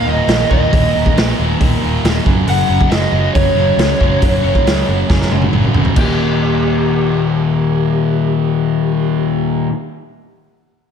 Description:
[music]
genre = hard rock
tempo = 137 BPM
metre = 4/4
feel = straight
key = unclear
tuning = A4 = 440 Hz
[part]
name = lead guitar through a small cranked amp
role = melody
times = 0.0-9.7 s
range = G4 to Gb5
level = -19 LUFS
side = equal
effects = overdrive, slapback echo
[part]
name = distorted electric guitar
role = riff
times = 0.0-9.7 s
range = Eb2 to Gb3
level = -19 LUFS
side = right 8 dB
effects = distortion, slapback echo
[part]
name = sludgy distorted guitar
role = riff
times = 0.0-9.7 s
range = Eb2 to Gb3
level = -18 LUFS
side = left 11 dB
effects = overdrive
[part]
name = picked electric bass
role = bass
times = 0.1-9.6 s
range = Eb1 to Db2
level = -18 LUFS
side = equal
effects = none
[part]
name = raw garage drum kit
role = drums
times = 0.3-6.1 s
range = crash cymbal, hi-hat, kick drum, snare drum, toms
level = -17 LUFS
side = equal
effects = none
[sound]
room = light reverb, small room ambience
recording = none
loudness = -12 LUFS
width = side -7 dB against mid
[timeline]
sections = 0.0-6.0 A section; 6.0-9.5 B section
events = drum fill 5.1-6.0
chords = 0.0 Eb5; 2.2 Gb5; 6.0 Eb

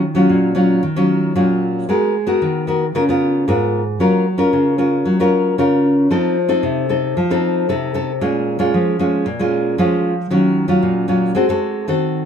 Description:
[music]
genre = samba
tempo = 114 BPM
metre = 4/4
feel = straight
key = unclear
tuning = A4 = 445 Hz
[part]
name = nylon-string guitar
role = solo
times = 0.0-12.3 s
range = Ab2 to Bb4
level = -14 LUFS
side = equal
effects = none
[sound]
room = wet studio ambience, RT60 0.5 s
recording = heard from further back in the room, lossy compression artefacts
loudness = -14 LUFS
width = side -8 dB against mid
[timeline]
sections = 0.0-12.3 A section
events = none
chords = 0.0 Ebm9; 1.9 Abm9; 2.9 Db6; 4.0 Gbmaj7; 6.1 F7; 8.2 Bbm7; 10.3 Ebm9; 11.4 Ab7b9

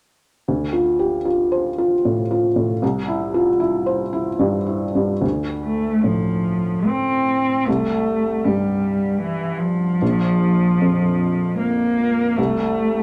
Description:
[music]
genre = neoclassical piano and strings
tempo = 76 BPM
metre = 3/4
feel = rubato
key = D minor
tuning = A4 = 443 Hz
[part]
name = felt-muted upright piano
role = accompaniment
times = 0.5-13.0 s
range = Bb1 to C5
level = -22 LUFS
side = equal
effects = none
[part]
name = muted cello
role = second line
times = 5.6-13.0 s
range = E3 to C4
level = -21 LUFS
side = equal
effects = none
[sound]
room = moderate large studio reverb, RT60 1.1 s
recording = none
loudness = -20 LUFS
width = mono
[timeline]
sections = 0.5-5.2 A section; 5.2-13.0 B section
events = none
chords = 0.5 Dm7; 2.8 C; 5.2 Dm7; 7.7 C5; 10.0 Bb5; 12.4 Am/C

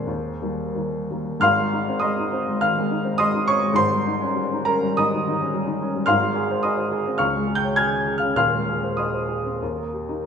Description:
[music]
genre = classical, romantic character piece for solo piano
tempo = 104 BPM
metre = 4/4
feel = uneven beats, rubato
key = Ab major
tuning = A4 = 440 Hz
[part]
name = warm upright piano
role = solo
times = 0.0-10.3 s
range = Eb1 to Ab6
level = -20 LUFS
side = equal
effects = none
[sound]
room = wet recital hall reverb, RT60 1.8 s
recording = minimal, uncompressed stereo recording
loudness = -20 LUFS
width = side -7 dB against mid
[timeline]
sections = 0.0-1.4 A section; 1.4-10.3 B section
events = none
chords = 0.1 Eb; 1.4 Ab; 3.8 Eb7/Ab; 6.1 Ab; 7.2 Db; 8.4 Ab/Eb; 9.6 Eb

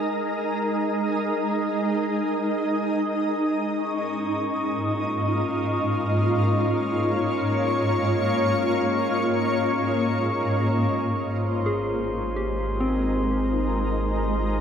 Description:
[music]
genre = ambient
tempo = free time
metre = none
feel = none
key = Ab major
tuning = A4 = 439 Hz
[part]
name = shimmering ambient pad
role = sustained chords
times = 0.0-14.6 s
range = Ab2 to Eb5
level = -23 LUFS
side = equal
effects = chorus, built-in reverb
[part]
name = glass harmonica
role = texture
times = 3.8-14.6 s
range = Db4 to Db6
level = -29 LUFS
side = left 2 dB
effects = none
[part]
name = warm sub bass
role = bass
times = 11.3-14.6 s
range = Ab1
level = -29 LUFS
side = equal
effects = none
[part]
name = soft synth bell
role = arpeggios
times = 11.7-14.6 s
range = C4 to Ab4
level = -28 LUFS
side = equal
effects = chorus, diffuse ambient delay
[sound]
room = wet cathedral reverb, RT60 5.2 s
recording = none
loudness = -22 LUFS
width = side -8 dB against mid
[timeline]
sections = 0.0-11.3 A section; 11.3-14.6 B section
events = none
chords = 0.0 Ab5; 3.8 Bbm7/Ab; 11.3 Ab

